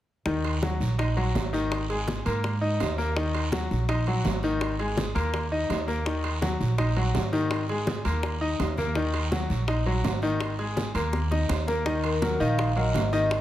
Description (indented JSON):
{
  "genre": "latin, salsa",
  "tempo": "166 BPM",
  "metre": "4/4",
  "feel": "straight",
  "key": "Eb minor",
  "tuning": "A4 = 440 Hz",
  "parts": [
    { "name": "bright baby grand piano", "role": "accompaniment", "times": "0.3-13.4 s", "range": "Eb3 to Eb5", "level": "-28 LUFS", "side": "left 2 dB", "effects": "none" },
    { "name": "upright bass", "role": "bass", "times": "0.3-13.4 s", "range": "Ab1 to Ab2", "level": "-28 LUFS", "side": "right 1 dB", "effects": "none" },
    { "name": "bongos", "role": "percussion", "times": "0.3-13.4 s", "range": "none", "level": "-35 LUFS", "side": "left 3 dB", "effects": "none" },
    { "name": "congas", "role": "percussion", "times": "0.3-13.4 s", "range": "none", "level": "-36 LUFS", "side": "equal", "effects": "none" },
    { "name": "guiro", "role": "percussion", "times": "0.3-13.4 s", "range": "none", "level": "-41 LUFS", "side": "right 4 dB", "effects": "none" },
    { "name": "timbales", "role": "percussion", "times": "0.4-13.4 s", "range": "none", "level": "-36 LUFS", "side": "right 6 dB", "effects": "none" },
    { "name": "vibraphone with soft mallets", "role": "melody", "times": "12.0-13.4 s", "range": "Bb4 to F5", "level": "-28 LUFS", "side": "left 2 dB", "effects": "none" }
  ],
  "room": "moderate large studio reverb, RT60 1.2 s",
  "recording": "none",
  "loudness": "-24 LUFS",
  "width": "side -13 dB against mid",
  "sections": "0.3-11.9 A section; 11.9-13.4 B section",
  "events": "drum fill 11.1-11.9",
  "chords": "0.3 Ebm; 1.7 Absus2; 3.2 Ebm; 4.6 Absus2; 6.1 Ebm; 7.5 Absus2; 9.0 Ebm; 10.4 Absus2; 11.9 Ebmadd9"
}